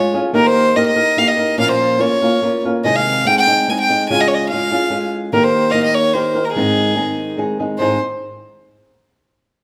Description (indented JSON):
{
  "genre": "mexican folk, mariachi",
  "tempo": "145 BPM",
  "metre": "3/4",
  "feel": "straight",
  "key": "Ab major",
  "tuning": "A4 = 441 Hz",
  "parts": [
    { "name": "rich violin", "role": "melody", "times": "0.0-8.0 s", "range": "Ab4 to Ab5", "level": "-18 LUFS", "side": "equal", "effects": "none" },
    { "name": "flamenco guitar", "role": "accompaniment", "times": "0.0-8.0 s", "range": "Ab2 to Bb4", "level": "-20 LUFS", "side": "equal", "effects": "none" }
  ],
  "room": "moderate recital hall reverb, RT60 1.4 s",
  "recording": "none",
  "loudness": "-16 LUFS",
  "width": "mono",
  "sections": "0.0-7.8 A section; 7.8-9.0 B section",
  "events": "none",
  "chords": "0.4 Eb; 1.6 Bbm; 2.8 Ab/C; 4.1 Db; 5.3 Eb; 6.6 Ab"
}